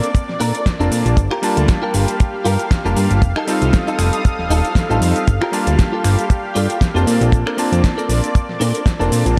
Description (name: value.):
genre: nu-disco, nu disco.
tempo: 117 BPM.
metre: 4/4.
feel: swing 55% on 16ths.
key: unclear.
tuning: A4 = 441 Hz.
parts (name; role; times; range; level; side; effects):
warm electric grand piano; accompaniment; 0.0-9.4 s; G3 to A5; -24 LUFS; equal; tape echo.
lush unison pad; sustained chords; 0.0-9.4 s; G4 to Eb6; -28 LUFS; equal; chorus, sidechain pumping.
direct-recorded clean electric guitar; riff; 0.0-9.3 s; D4 to C5; -26 LUFS; equal; ensemble chorus, tape echo.
pop drum kit; drums; 0.0-9.4 s; cabasa, finger snaps, hi-hat, snare drum; -28 LUFS; equal; overdrive.
kick drum; drums; 0.1-9.0 s; none; -16 LUFS; equal; none.
fat analog bass; bass; 0.3-9.4 s; Eb1 to Bb2; -19 LUFS; equal; none.
room: light reverb.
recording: none.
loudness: -17 LUFS.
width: mono.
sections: 0.0-9.4 A section.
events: none.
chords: 0.0 Bbmaj7; 1.2 Gm7; 3.2 F7; 5.3 Gm7; 7.1 Bbmaj7.